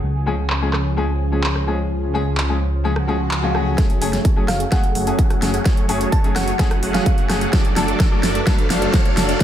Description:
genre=EDM, festival progressive house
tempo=128 BPM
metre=4/4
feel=straight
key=F# harmonic minor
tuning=A4 = 440 Hz
part: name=lush unison pad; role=sustained chords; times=0.0-9.4 s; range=E#3 to A4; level=-28 LUFS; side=right 1 dB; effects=chorus, phaser, sidechain pumping
part: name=detuned saw bass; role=bass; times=0.0-9.3 s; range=F#1 to C#2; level=-22 LUFS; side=equal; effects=sidechain pumping
part: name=clear grand piano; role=accompaniment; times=0.3-9.3 s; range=E#3 to A4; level=-25 LUFS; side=left 4 dB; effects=sidechain pumping, dub echo
part: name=big-room dance drum kit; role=drums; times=0.5-9.4 s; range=handclaps, hi-hat, rim click, snare drum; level=-24 LUFS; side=right 1 dB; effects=overdrive, studio reverb
part: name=swell and riser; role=sound effects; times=3.0-9.4 s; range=none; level=-30 LUFS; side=right 1 dB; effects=none
part: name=big supersaw lead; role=riff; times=3.8-9.4 s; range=F#3 to F#5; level=-23 LUFS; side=right 1 dB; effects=sidechain pumping, low-pass filter, dub echo
part: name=electronic kick drum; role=drums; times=3.8-9.4 s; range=none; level=-17 LUFS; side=equal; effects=overdrive, studio reverb
part: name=thumb-piano-like synth pluck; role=melody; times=4.5-7.4 s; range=E#5 to A5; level=-28 LUFS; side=right 2 dB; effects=chorus, dub echo
room=light reverb, digital ambience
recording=low-pass filter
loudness=-16 LUFS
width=side -10 dB against mid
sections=0.0-3.8 A section; 3.8-9.4 B section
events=filter sweep on analog synth pad 0.0-3.8; swell 3.0-3.8; build-up 3.8-9.4; drum fill 3.8-9.4; riser 3.8-9.4; filter sweep on supersaw synth 3.8-9.4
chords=0.0 C#; 3.8 F#madd9; 7.5 D/F#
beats=| 0.03 0.50 0.97 1.44 | 1.91 2.38 2.84 3.31 | 3.78 4.25 4.72 5.19 | 5.66 6.12 6.59 7.06 | 7.53 8.00 8.47 8.94 | 9.41

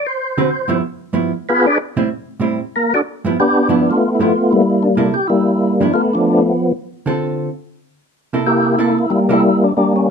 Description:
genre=jazz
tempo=188 BPM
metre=4/4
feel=swing 61% on 8ths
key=unclear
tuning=A4 = 440 Hz
part: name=percussive tonewheel organ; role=melody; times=0.0-10.1 s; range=F3 to D5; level=-13 LUFS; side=left 1 dB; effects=slow rotary speaker, overdrive, chorus vibrato
part: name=hollow-body jazz guitar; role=accompaniment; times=0.4-9.4 s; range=G2 to B4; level=-19 LUFS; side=right 4 dB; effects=none
room=moderate club reverb, RT60 0.8 s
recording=minimal, uncompressed stereo recording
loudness=-14 LUFS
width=side -6 dB against mid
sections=0.0-3.4 A section; 3.4-10.1 B section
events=tonewheel organ solo 0.0-3.4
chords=0.0 D13; 0.8 G6; 1.5 E7b9; 2.7 Dadd9; 4.6 C6; 5.9 Dm6; 7.8 C7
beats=0.19 0.50 | 0.82 1.14 1.46 1.77 | 2.09 2.41 2.73 3.05 | 3.37 3.68 4.00 4.32 | 4.64 4.96 5.27 5.59 | 5.91 6.23 6.55 6.87 | 7.18 7.50 7.82 8.14 | 8.46 8.78 9.10 9.41 | 9.73 10.05

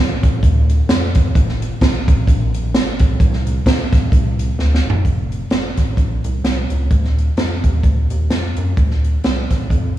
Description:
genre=uptempo gospel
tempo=129 BPM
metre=4/4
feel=swing 57% on 8ths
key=F major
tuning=A4 = 439 Hz
part: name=rubbery square bass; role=bass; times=0.0-9.9 s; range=E1 to Gb2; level=-18 LUFS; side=equal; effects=none
part: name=swinging big-band drum kit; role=drums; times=0.2-9.8 s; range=hi-hat, kick drum, snare drum, toms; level=-16 LUFS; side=equal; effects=none
room=light reverb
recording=live gig heard through the venue's PA, club reverb, small room ambience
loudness=-14 LUFS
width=side -13 dB against mid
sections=0.0-5.0 A section; 5.0-10.0 B section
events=drum fill 4.6-5.0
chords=none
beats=0.43 0.89 | 1.35 1.81 2.27 2.73 | 3.20 3.66 4.12 4.58 | 5.05 5.51 5.98 6.44 | 6.91 7.38 7.84 8.31 | 8.77 9.24 9.71

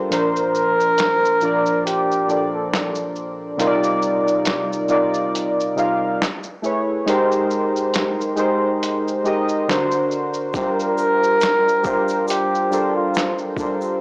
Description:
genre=lo-fi hip hop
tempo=69 BPM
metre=4/4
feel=swing 56% on 16ths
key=G minor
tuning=A4 = 438 Hz
part: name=warbly lo-fi synth keys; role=accompaniment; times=0.0-14.0 s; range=Bb2 to F5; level=-19 LUFS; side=equal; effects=chorus, cassette tape
part: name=breathy flugelhorn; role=melody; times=0.1-2.7, 10.5-13.4 s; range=F4 to Bb4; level=-18 LUFS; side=equal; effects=none
part: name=lo-fi sampler-style drum kit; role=drums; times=0.1-13.8 s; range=hi-hat, kick drum, shaker, snare drum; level=-25 LUFS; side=equal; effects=none
part: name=egg shaker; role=percussion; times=10.5-14.0 s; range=none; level=-42 LUFS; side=equal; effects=none
room=light reverb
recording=dry, gritty hardware recording, cassette tape, small speaker sound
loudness=-17 LUFS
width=side -29 dB against mid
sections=0.0-14.0 A section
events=break 0.0-10.5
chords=0.1 Bbmaj7; 3.6 Cm11; 6.2 Amaj7; 7.1 Abmaj7; 9.7 D7b13; 10.5 Gm11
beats=| 0.10 0.97 1.84 2.71 | 3.58 4.45 5.32 6.19 | 7.06 7.93 8.80 9.67 | 10.54 11.41 12.28 13.15

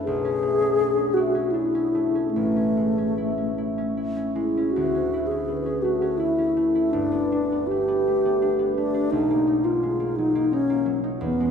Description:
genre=classical, impressionist duo for alto flute and harp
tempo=72-86 BPM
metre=3/4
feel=rubato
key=unclear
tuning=A4 = 439 Hz
part: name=mellow alto flute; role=melody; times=0.0-11.5 s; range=A3 to G#4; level=-22 LUFS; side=left 1 dB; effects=none
part: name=concert harp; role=accompaniment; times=0.0-11.5 s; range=G1 to E4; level=-27 LUFS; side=equal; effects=none
room=wet church reverb, RT60 3.7 s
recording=recorded in a church or concert hall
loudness=-21 LUFS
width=side -7 dB against mid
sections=0.0-4.7 A section; 4.7-11.5 B section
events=none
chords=0.1 Bm11; 2.3 Amaj7; 4.7 Dsus2; 6.9 Gadd9; 9.1 Bmaj7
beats=| 0.06 0.78 1.53 | 2.33 3.14 3.94 | 4.73 5.47 6.20 | 6.92 7.68 8.41 | 9.11 9.82 10.53 | 11.24

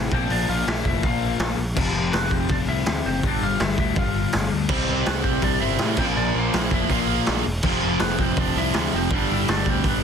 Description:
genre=punk rock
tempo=164 BPM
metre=4/4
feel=straight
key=unclear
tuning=A4 = 441 Hz
part: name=lightly driven lead guitar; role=melody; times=0.0-10.0 s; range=B3 to F5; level=-28 LUFS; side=equal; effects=none
part: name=distorted electric guitar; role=riff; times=0.0-10.0 s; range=F2 to C4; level=-26 LUFS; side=left 12 dB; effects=distortion
part: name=fuzz picked electric bass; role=bass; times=0.0-10.0 s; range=E1 to A2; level=-27 LUFS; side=right 1 dB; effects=overdrive
part: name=raw garage drum kit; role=drums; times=0.1-9.9 s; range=crash cymbal, hi-hat, kick drum, snare drum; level=-24 LUFS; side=right 1 dB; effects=none
part: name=distorted electric guitar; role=riff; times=4.7-10.0 s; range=F2 to C4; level=-26 LUFS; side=right 15 dB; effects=overdrive
room=light reverb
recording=dense, heavily limited modern master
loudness=-20 LUFS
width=side -7 dB against mid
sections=0.0-10.0 A section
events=none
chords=0.1 Bb; 1.8 F5; 3.2 G5; 4.7 C; 6.0 Bb; 7.6 F5; 9.1 G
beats=| 0.30 0.67 1.03 1.40 | 1.77 2.13 2.50 2.87 | 3.23 3.60 3.96 4.33 | 4.70 5.07 5.43 5.80 | 6.17 6.53 6.90 7.27 | 7.63 8.00 8.37 8.73 | 9.10 9.47 9.83

